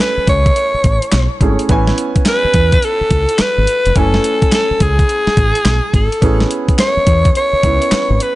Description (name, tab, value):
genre	R&B, new jack swing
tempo	106 BPM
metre	4/4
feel	swing 64% on 16ths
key	A major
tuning	A4 = 440 Hz
part	raspy alto saxophone	melody	0.0-8.4 s	G#4 to C#5	-15 LUFS	equal	ping-pong delay
part	clear concert grand piano	accompaniment	0.0-8.4 s	A3 to G#5	-22 LUFS	right 2 dB	none
part	deep dub fingered electric bass	bass	0.2-8.2 s	F1 to E2	-15 LUFS	equal	none
part	crisp 8-bit digital drum machine	drums	0.3-8.4 s	handclaps, hi-hat, kick drum, snare drum	-15 LUFS	equal	none
room	digital ambience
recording	nothing above 10.6 kHz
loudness	-11 LUFS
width	side -17 dB against mid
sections	0.0-8.4 A section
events	none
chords	0.0 F#m9 (rootless); 1.7 Amaj9; 4.0 F#m9 (rootless); 6.2 Amaj9 (rootless)